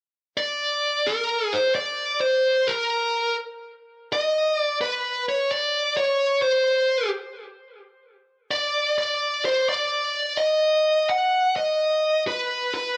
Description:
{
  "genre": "rock",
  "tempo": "128 BPM",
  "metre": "4/4",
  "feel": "straight",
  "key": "unclear",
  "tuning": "A4 = 439 Hz",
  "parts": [
    { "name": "bluesy overdriven lead guitar", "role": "melody", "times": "0.4-13.0 s", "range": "Bb4 to F#5", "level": "-23 LUFS", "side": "equal", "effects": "distortion" }
  ],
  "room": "moderate large studio reverb, RT60 0.9 s, digital ambience",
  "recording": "none",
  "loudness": "-23 LUFS",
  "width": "mono",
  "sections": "0.0-1.1 A section; 1.1-13.0 B section",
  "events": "none",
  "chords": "none",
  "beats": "0.13 0.60 | 1.06 1.53 2.00 2.47 | 2.93 3.40 3.87 4.33 | 4.80 5.27 5.74 6.20 | 6.67 7.14 7.60 8.07 | 8.54 9.00 9.47 9.94 | 10.40 10.87 11.33 11.80 | 12.27 12.73"
}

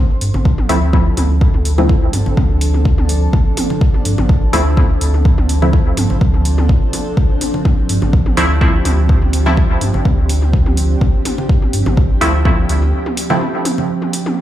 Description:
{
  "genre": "dub techno",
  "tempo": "125 BPM",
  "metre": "4/4",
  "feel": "swing 54% on 16ths",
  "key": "D minor",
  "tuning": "A4 = 440 Hz",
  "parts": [
    { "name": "granular cloud pad", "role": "sustained chords", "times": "0.0-14.4 s", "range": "F3 to A4", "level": "-22 LUFS", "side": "right 1 dB", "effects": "built-in reverb, sidechain pumping" },
    { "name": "warm sub bass", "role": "bass", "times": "0.2-12.9 s", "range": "A1 to G2", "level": "-15 LUFS", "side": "equal", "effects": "sidechain pumping" },
    { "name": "electronic hi-hat", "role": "drums", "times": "0.2-14.2 s", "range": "none", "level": "-24 LUFS", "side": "right 1 dB", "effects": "overdrive" },
    { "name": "electronic toms and congas", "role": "percussion", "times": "0.3-14.3 s", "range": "none", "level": "-24 LUFS", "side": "left 1 dB", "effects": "overdrive, sidechain pumping on toms, sidechain pumping on perc, dub echo" },
    { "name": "electronic kick drum", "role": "drums", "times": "0.5-12.6 s", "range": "none", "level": "-13 LUFS", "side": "equal", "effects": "overdrive" },
    { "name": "filtered dub chord stab", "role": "stabs", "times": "0.7-13.4 s", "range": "F3 to E4", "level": "-18 LUFS", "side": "equal", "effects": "chorus, phaser, sidechain pumping, dub echo" }
  ],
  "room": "little or no reverb",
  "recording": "played on a big sound system in a bare room, large studio reverb",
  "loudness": "-12 LUFS",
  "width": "side -12 dB against mid",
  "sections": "0.0-14.4 A section",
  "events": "break 12.9-14.4",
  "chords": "0.0 Dm7",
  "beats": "0.45 0.93 | 1.41 1.89 2.37 2.85 | 3.33 3.81 4.29 4.77 | 5.25 5.73 6.21 6.69 | 7.17 7.65 8.13 8.61 | 9.09 9.57 10.05 10.53 | 11.01 11.49 11.97 12.45 | 12.93 13.41 13.89 14.37"
}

